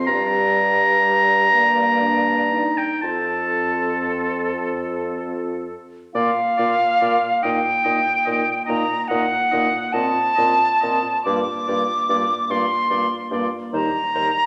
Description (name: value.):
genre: classical, slow romantic movement for wind quintet.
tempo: 38-49 BPM (dotted quarters).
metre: 6/8.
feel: rubato.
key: unclear.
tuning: A4 = 440 Hz.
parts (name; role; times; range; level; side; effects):
warm oboe; second line; 0.0-14.3 s; C5 to Bb5; -24 LUFS; equal; none.
dark clarinet; accompaniment; 0.0-14.3 s; D4 to G4; -33 LUFS; equal; none.
mellow French horn; accompaniment; 0.0-14.3 s; G3 to C4; -32 LUFS; equal; none.
warm bassoon; bass; 0.0-14.3 s; Eb2 to Bb2; -29 LUFS; equal; none.
bright concert flute; melody; 0.1-14.5 s; A4 to D6; -23 LUFS; equal; none.
room: wet recital hall reverb, RT60 1.5 s.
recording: none.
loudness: -20 LUFS.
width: mono.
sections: 0.0-6.1 A section; 6.1-14.5 B section.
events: none.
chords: 0.1 Gm; 3.0 F; 6.1 Bb; 7.4 Eb/Bb; 9.9 F7/Bb; 11.2 Gm7; 13.7 Cm7/Eb.